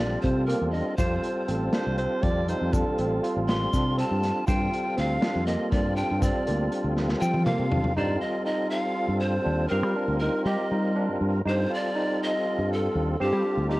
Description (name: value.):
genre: progressive instrumental, band music in an uneven meter.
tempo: 241 BPM (eighths).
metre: 7/8.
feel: straight.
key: G minor.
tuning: A4 = 438 Hz.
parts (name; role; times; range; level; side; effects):
breathy bright pan flute; melody; 0.0-13.8 s; G4 to C6; -30 LUFS; equal; cassette tape.
percussive tonewheel organ; accompaniment; 0.0-13.8 s; G3 to Bb4; -29 LUFS; equal; overdrive, chorus vibrato, stopped rotary speaker, cassette tape.
barky tine electric piano; arpeggios; 0.0-13.8 s; Bb3 to G4; -32 LUFS; right 2 dB; cassette tape, tape echo.
fingered electric bass; bass; 0.0-13.8 s; A1 to G3; -27 LUFS; equal; none.
vintage drum kit; drums; 0.2-8.0 s; hi-hat, kick drum, snare drum, toms; -28 LUFS; equal; cassette tape.
egg shaker; percussion; 1.0-7.6 s; none; -46 LUFS; left 3 dB; none.
raspy alto saxophone; second line; 1.5-3.4 s; A4 to D5; -30 LUFS; right 2 dB; cassette tape, plate reverb.
room: moderate small room reverb, RT60 0.5 s.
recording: home recording on cassette.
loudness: -23 LUFS.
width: side -19 dB against mid.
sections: 0.0-8.0 A section; 8.0-13.8 B section.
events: pan flute solo 0.0-8.0; drum fill 7.0-8.0.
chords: 0.0 Ebmaj7; 1.0 Dm7; 4.5 Gm11; 8.0 F7/G; 9.7 Ebmaj7; 11.5 F7/G; 13.2 Ebmaj7.